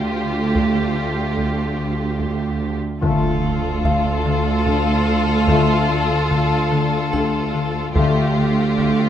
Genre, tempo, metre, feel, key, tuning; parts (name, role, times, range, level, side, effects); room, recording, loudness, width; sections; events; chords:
cinematic, suspense film score; 73 BPM; 3/4; straight; D minor; A4 = 438 Hz
muted chamber violin section; melody; 0.0-9.1 s; G4 to A4; -25 LUFS; left 2 dB
muted chamber violin section; second line; 0.0-9.1 s; F4; -25 LUFS; left 2 dB
muted chamber viola section; accompaniment; 0.0-9.1 s; A3; -24 LUFS; right 4 dB
muted chamber cello section; bass; 0.0-9.1 s; D2; -27 LUFS; right 1 dB
muted chamber double bass section; bass; 0.0-9.1 s; D2; -24 LUFS; right 2 dB
music box; texture; 0.0-9.1 s; G4 to G5; -28 LUFS; left 1 dB
buzzing marimba with soft mallets; riff; 0.1-9.0 s; D3 to D4; -24 LUFS; left 4 dB
taiko ensemble; drums; 0.6-9.1 s; -25 LUFS; right 1 dB
warm French horn section; sustained chords; 3.0-8.2 s; A3 to F4; -25 LUFS; left 4 dB
impact; sound effects; 3.0-5.5 s; -29 LUFS; equal
moderate scoring stage reverb, RT60 2.0 s; -17 LUFS; side -10 dB against mid
0.0-3.0 A section; 3.0-9.1 B section
impact 3.0-5.5
0.0 Dm